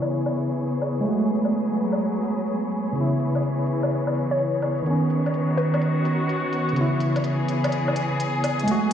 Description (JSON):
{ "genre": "future garage", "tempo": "126 BPM", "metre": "4/4", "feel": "swing 67% on 16ths", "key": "C# minor", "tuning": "A4 = 442 Hz", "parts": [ { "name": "tine electric piano", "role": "accompaniment", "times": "0.0-8.9 s", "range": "C#3 to F#4", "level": "-23 LUFS", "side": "right 1 dB", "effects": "medium tremolo, ping-pong delay" }, { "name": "muted studio string section", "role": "sustained chords", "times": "0.0-8.9 s", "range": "D#3 to C#5", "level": "-26 LUFS", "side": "left 1 dB", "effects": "none" }, { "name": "electronic hi-hat and woodblock", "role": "drums", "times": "0.0-8.9 s", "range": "none", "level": "-30 LUFS", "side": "left 1 dB", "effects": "none" }, { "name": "wind-like tuned noise texture", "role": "texture", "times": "0.0-8.9 s", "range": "B3 to B4", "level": "-34 LUFS", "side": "left 1 dB", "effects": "built-in reverb" }, { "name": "hollow square pluck", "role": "melody", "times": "4.3-6.3 s", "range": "B4 to C#5", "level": "-29 LUFS", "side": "left 1 dB", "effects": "chorus, dub echo" } ], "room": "moderate lush hall reverb, RT60 1.9 s, digital ambience", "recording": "played on a big sound system in a bare room, large studio reverb, vinyl crackle, low-pass filter", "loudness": "-21 LUFS", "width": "side -9 dB against mid", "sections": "0.0-8.9 A section", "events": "filter sweep 0.0-8.9", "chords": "0.0 C#m7; 1.1 F#madd9; 3.0 C#m7; 4.9 Badd9; 6.8 C#m7", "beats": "0.10 0.58 | 1.06 1.53 2.01 2.49 | 2.96 3.44 3.91 4.39 | 4.87 5.34 5.82 6.29 | 6.77 7.25 7.72 8.20 | 8.68" }